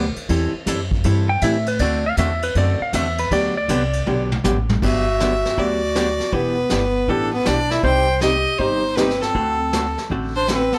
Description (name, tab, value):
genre	country, western swing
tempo	159 BPM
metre	4/4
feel	swing 66% on 8ths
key	G major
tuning	A4 = 441 Hz
part	archtop guitar, miked and amplified	accompaniment	0.0-10.6 s	C3 to A4	-26 LUFS	equal	none
part	upright bass	bass	0.0-10.7 s	E1 to A2	-26 LUFS	equal	none
part	vintage brush drum kit	drums	0.2-10.8 s	brushed snare drum, crash cymbal, hi-hat, kick drum, ride cymbal, snare drum, toms	-29 LUFS	equal	none
part	clean lap steel guitar	second line	1.3-4.3 s	B4 to G5	-25 LUFS	equal	none
part	clear fiddle	melody	4.8-10.8 s	A4 to G5	-24 LUFS	equal	plate reverb
part	clear clarinet	second line	4.8-10.8 s	B3 to C5	-26 LUFS	equal	none
room	moderate studio reverb, RT60 0.9 s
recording	none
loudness	-20 LUFS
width	mono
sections	0.0-4.8 A section; 4.8-10.8 B section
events	electric slide guitar solo 0.0-4.8; drum fill 4.1-4.8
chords	0.3 Am7; 1.8 D7; 3.3 Gmaj7; 6.3 Em7; 7.8 Cm; 9.4 D7